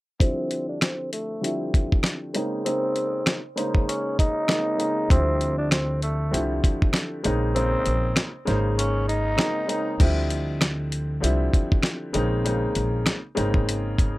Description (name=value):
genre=hip hop, boom-bap hip-hop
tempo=98 BPM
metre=4/4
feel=swing 57% on 16ths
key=unclear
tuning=A4 = 440 Hz
part: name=growling tenor saxophone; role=melody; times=0.2-10.0 s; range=A3 to Eb4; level=-28 LUFS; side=equal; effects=high-pass filter, low-pass filter, tape echo
part: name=dark upright piano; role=accompaniment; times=0.2-14.2 s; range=Db3 to C5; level=-27 LUFS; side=equal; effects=cassette tape, high-pass filter, low-pass filter
part: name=dusty soul sampler-style drum kit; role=drums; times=0.2-14.1 s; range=crash cymbal, hi-hat, kick drum, rim click, snare drum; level=-22 LUFS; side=equal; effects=none
part: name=upright bass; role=bass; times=5.1-14.2 s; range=Ab1 to D2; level=-25 LUFS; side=equal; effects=none
room=little or no reverb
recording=none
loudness=-21 LUFS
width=side -19 dB against mid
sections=0.2-10.0 A section; 10.0-14.2 B section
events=filter sweep 0.2-10.0; kick muted 7.6-10.0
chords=0.2 Dm11; 2.3 Bbm11; 5.1 Dm11; 7.2 Bbm11; 10.0 Dm11; 12.1 Bbm11